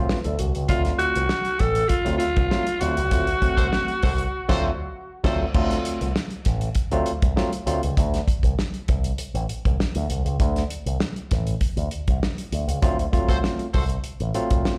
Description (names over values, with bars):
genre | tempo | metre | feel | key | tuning
funk | 99 BPM | 4/4 | straight | D mixolydian | A4 = 442 Hz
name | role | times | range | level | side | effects
barky tine electric piano | stabs | 0.0-7.8, 12.8-14.7 s | E#3 to B4 | -29 LUFS | equal | overdrive, slapback echo
picked electric bass with an envelope filter | bass | 0.0-14.6 s | A1 to D2 | -27 LUFS | equal | none
damped 70s drum kit | drums | 0.1-14.8 s | crash cymbal, hi-hat, kick drum, snare drum | -26 LUFS | equal | none
growling alto saxophone | melody | 0.7-5.2 s | E#4 to A4 | -26 LUFS | equal | none
warm horn section | second line | 3.6-5.4, 13.3-13.8 s | F#4 to C5 | -35 LUFS | equal | slapback echo
room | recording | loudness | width
little or no reverb | live gig heard through the venue's PA, club reverb | -23 LUFS | mono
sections
0.0-5.5 A section; 5.5-14.8 B section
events
tine electric piano fill 0.0-0.7; band accent 3.1-5.5, 12.8-14.8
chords
0.0 D7#9